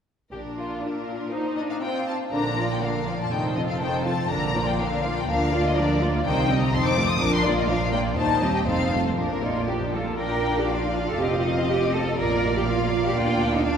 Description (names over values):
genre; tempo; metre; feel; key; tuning
quick classical-period movement for string orchestra; 122 BPM; 2/4; rubato; Bb major; A4 = 440 Hz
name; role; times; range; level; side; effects
warm symphonic violin section; melody; 0.3-13.8 s; Bb4 to Eb6; -28 LUFS; left 4 dB; none
warm symphonic violin section; second line; 0.3-13.8 s; C4 to F5; -29 LUFS; left 2 dB; none
warm symphonic viola section; accompaniment; 0.3-13.8 s; D3 to F4; -27 LUFS; right 1 dB; none
rich studio cello section; bass; 0.3-13.8 s; Eb2 to Bb4; -29 LUFS; right 2 dB; none
warm symphonic double bass section; bass; 0.3-13.8 s; F1 to Eb2; -28 LUFS; right 2 dB; none
room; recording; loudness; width
wet church reverb, RT60 3.5 s; recorded in a church or concert hall; -21 LUFS; side -7 dB against mid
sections
0.3-2.3 A section; 2.3-10.2 B section; 10.2-13.8 B section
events
none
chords
0.3 Bb; 1.3 F5/Bb; 2.3 Bb; 3.3 F7; 4.3 Bb; 5.3 Bb/D; 6.3 Cm; 6.7 F7; 7.2 Bb; 8.2 Cm/Eb; 8.7 F7; 9.2 Bb; 11.2 F7; 12.2 Bb; 13.2 Bb/D